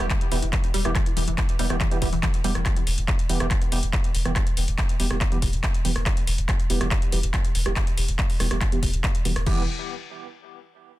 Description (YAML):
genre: driving peak-time techno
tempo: 141 BPM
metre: 4/4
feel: straight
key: E minor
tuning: A4 = 440 Hz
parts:
  - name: tight sequenced synth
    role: riff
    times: 0.0-2.6, 9.5-9.7 s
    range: E3 to G3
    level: -31 LUFS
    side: left 2 dB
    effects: chorus, phaser, overdrive, sidechain pumping, ping-pong delay
  - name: sync-sweep polysynth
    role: stabs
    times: 0.0-9.6 s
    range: E3 to G4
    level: -31 LUFS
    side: right 3 dB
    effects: chorus, sidechain pumping, ping-pong delay
  - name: saturated sub bass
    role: bass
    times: 0.0-9.7 s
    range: E1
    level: -26 LUFS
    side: equal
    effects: overdrive, sidechain pumping, low-pass filter
  - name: techno drum kit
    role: drums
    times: 0.0-9.6 s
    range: crash cymbal, handclaps, hi-hat, rim click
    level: -29 LUFS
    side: left 1 dB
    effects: sidechain pumping on hats, sidechain pumping on cymbals
  - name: electronic kick drum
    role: drums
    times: 0.1-9.6 s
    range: none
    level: -24 LUFS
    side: equal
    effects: none
room: light reverb, digital ambience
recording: dense, heavily limited modern master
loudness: -21 LUFS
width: side -16 dB against mid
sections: 0.0-9.5 A section; 9.5-11.0 B section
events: filter sweep on analog polysynth 0.0-9.5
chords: 0.0 Em